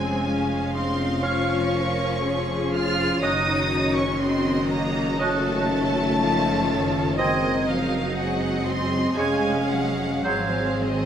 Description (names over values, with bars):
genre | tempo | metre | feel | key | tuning
classical, slow romantic movement for symphony orchestra | 61 BPM | 4/4 | rubato | Db major | A4 = 440 Hz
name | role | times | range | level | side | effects
rich chamber violin section | melody | 0.0-11.1 s | Eb5 to F6 | -29 LUFS | equal | none
warm studio violin section | second line | 0.0-11.1 s | Eb4 to F5 | -31 LUFS | right 1 dB | none
rich chamber viola section | accompaniment | 0.0-11.1 s | Eb3 to Bb4 | -29 LUFS | left 1 dB | none
mellow French horn section | sustained chords | 0.0-11.1 s | Eb3 to Db4 | -26 LUFS | left 2 dB | none
rich chamber double bass section | bass | 0.0-11.1 s | F1 to Ab1 | -29 LUFS | right 2 dB | none
rich studio cello section | bass | 0.0-11.1 s | Eb3 to F4 | -30 LUFS | right 1 dB | none
bright oboe | second line | 1.2-10.7 s | C5 to F5 | -31 LUFS | equal | none
warm bassoon | accompaniment | 1.2-10.7 s | Gb3 to Db4 | -30 LUFS | right 2 dB | none
flute section | second line | 1.3-10.8 s | F6 to Ab6 | -31 LUFS | right 5 dB | none
room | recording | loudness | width
wet stone room reverb, RT60 1.1 s | none | -20 LUFS | side -9 dB against mid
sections
0.0-11.1 A section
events
none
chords
0.0 Db/F; 3.2 Ebm7b5/Gb; 7.2 Ab7/Gb; 9.2 Db/F; 10.3 Ab7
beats
0.26 1.24 2.23 | 3.23 4.21 5.20 6.20 | 7.19 8.17 9.17 10.25